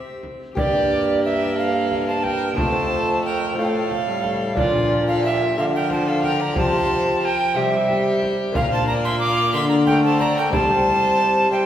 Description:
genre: classical, renaissance-style consort dance.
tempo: 60 BPM (dotted quarters).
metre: 6/8.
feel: straight.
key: unclear.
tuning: A4 = 440 Hz.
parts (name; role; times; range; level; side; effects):
rich violin; melody; 0.0-11.7 s; F4 to F5; -29 LUFS; left 3 dB; none.
bright alto recorder; second line; 0.0-11.7 s; G4 to D6; -21 LUFS; right 2 dB; none.
lute; accompaniment; 0.0-11.7 s; F2 to G4; -26 LUFS; left 2 dB; none.
warm viola; accompaniment; 0.0-11.7 s; F3 to C4; -27 LUFS; left 1 dB; none.
warm bassoon; bass; 0.0-11.7 s; F2 to D3; -24 LUFS; equal; none.
frame drum; percussion; 0.2-10.8 s; none; -29 LUFS; equal; none.
room: wet recital hall reverb, RT60 1.7 s.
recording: recorded in a church or concert hall.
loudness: -17 LUFS.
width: side -10 dB against mid.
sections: 0.6-11.7 A section.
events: none.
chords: 0.0 C; 0.6 Gm; 2.6 F; 4.6 Bb; 6.6 Csus4; 7.6 C; 8.6 Bb; 10.5 C.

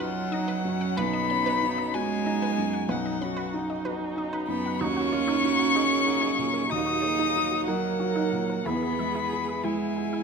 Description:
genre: neoclassical piano and strings.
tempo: 62 BPM (dotted quarters).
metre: 6/8.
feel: rubato.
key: unclear.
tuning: A4 = 441 Hz.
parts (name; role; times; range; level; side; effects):
dark violin; melody; 0.0-10.2 s; Gb5 to Eb6; -29 LUFS; left 7 dB; none.
clear cello; second line; 0.0-10.2 s; F#3 to Eb4; -29 LUFS; right 6 dB; none.
dark viola; accompaniment; 0.0-10.2 s; B3 to Bb4; -34 LUFS; right 2 dB; none.
felt-muted upright piano; accompaniment; 0.0-10.2 s; B1 to G#4; -33 LUFS; equal; none.
pedal harmonium; sustained chords; 0.0-10.2 s; F#3 to G#4; -37 LUFS; equal; none.
resonant blip pluck; arpeggios; 0.0-10.2 s; Eb4 to B5; -36 LUFS; right 2 dB; chorus, phaser.
room: moderate scoring stage reverb, RT60 1.8 s.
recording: minimal, uncompressed stereo recording.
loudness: -24 LUFS.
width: side -5 dB against mid.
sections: 0.0-10.2 A section.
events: none.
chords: 0.0 Badd9; 4.8 Ebm7; 8.7 E.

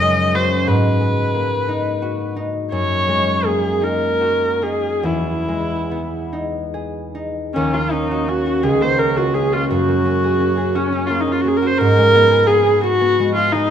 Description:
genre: classical, impressionist duo for viola and harp.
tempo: 46-61 BPM (dotted quarters).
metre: 6/8.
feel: rubato.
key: unclear.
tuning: A4 = 437 Hz.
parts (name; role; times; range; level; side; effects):
warm viola; melody; 0.0-13.7 s; Db4 to Eb5; -17 LUFS; equal; none.
concert harp; accompaniment; 0.0-13.7 s; Db2 to G#4; -19 LUFS; equal; none.
room: moderate recital hall reverb, RT60 1.6 s.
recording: dark, warm production.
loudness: -15 LUFS.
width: side -8 dB against mid.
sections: 0.0-7.5 A section; 7.5-13.7 B section.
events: none.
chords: 0.0 Gbsus2; 0.7 Abm9; 2.7 Gb69; 5.1 Emaj7; 7.5 Ebm7; 8.6 Db69; 9.7 Gbadd9; 11.8 Abm7.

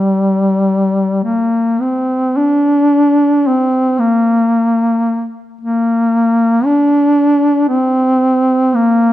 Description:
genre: caucasian folk.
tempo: free time.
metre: none.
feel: none.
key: unclear.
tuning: A4 = 435 Hz.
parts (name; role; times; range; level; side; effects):
mellow duduk; solo; 0.0-9.1 s; G3 to D4; -11 LUFS; equal; none.
room: moderate recital hall reverb, RT60 1.5 s.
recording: none.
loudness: -11 LUFS.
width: side -14 dB against mid.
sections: 0.0-2.4 A section; 2.4-9.1 A section.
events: none.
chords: none.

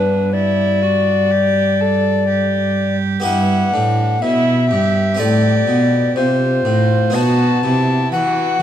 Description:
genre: classical, baroque-style sonata movement with continuo.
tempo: 62 BPM.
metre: 4/4.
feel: straight.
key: G major, E minor from 3.2 s.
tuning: A4 = 438 Hz.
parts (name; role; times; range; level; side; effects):
tenor recorder; melody; 0.0-8.6 s; B4 to A5; -18 LUFS; left 5 dB; none.
rich violin; second line; 0.0-8.6 s; D4 to A4; -24 LUFS; right 9 dB; none.
harpsichord; accompaniment; 0.0-8.6 s; G2 to B4; -23 LUFS; equal; none.
dark cello; bass; 0.0-8.6 s; G2 to E3; -17 LUFS; right 2 dB; none.
room: moderate recital hall reverb, RT60 1.7 s.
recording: close, detailed microphones.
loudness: -13 LUFS.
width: side -10 dB against mid.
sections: 0.0-8.6 A section.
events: none.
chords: 0.0 G; 3.2 Em/G; 5.2 F/A; 7.2 B7.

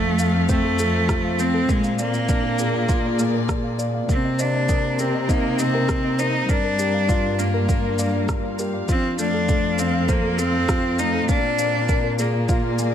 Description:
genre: piano and strings electronica.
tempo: 100 BPM.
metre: 4/4.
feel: straight.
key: unclear.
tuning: A4 = 440 Hz.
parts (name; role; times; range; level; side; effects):
bright cello; melody; 0.0-12.9 s; Ab3 to Eb4; -23 LUFS; right 1 dB; tape echo.
dark chamber string section; sustained chords; 0.0-12.9 s; Bb2 to F5; -29 LUFS; left 3 dB; sidechain pumping.
soft round pluck; arpeggios; 0.0-12.9 s; A4 to G6; -34 LUFS; right 1 dB; none.
felt-muted upright piano; riff; 0.0-12.9 s; A3 to F5; -27 LUFS; left 1 dB; tape echo.
dark studio cello section; bass; 0.0-12.9 s; F2 to C3; -25 LUFS; left 1 dB; sidechain pumping.
electronic shaker and rim click; drums; 0.2-12.9 s; none; -30 LUFS; equal; small room ambience.
electronic kick drum; drums; 0.5-12.6 s; none; -22 LUFS; equal; small room ambience.
room: light reverb, small room ambience.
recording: none.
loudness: -18 LUFS.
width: side -9 dB against mid.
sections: 0.0-12.9 A section.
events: none.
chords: 0.0 F; 1.7 Bb7; 4.1 Cm7; 6.5 Gm7; 8.9 F; 11.3 Bb7.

